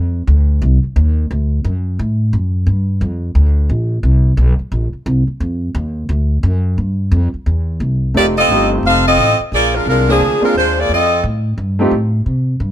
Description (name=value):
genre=jazz, big band swing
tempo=175 BPM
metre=4/4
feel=swing 62% on 8ths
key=F mixolydian from 8.1 s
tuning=A4 = 436 Hz
part: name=upright bass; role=bass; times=0.0-12.7 s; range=F1 to C3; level=-14 LUFS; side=equal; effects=none
part: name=warm grand piano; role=accompaniment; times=8.1-11.9 s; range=A3 to Ab4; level=-17 LUFS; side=right 1 dB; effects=none
part: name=clear saxophone section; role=melody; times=8.2-11.2 s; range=F3 to F5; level=-13 LUFS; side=equal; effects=plate reverb
room=little or no reverb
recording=close, detailed microphones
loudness=-13 LUFS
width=side -12 dB against mid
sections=0.0-8.1 A section; 8.1-12.7 B section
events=none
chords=0.0 F5; 1.3 D; 2.7 Gm7; 4.0 Bbsus2; 5.4 Ebsus2; 6.1 D; 6.8 Fsus2; 7.5 C; 8.1 F7; 9.5 Bb7; 10.9 F7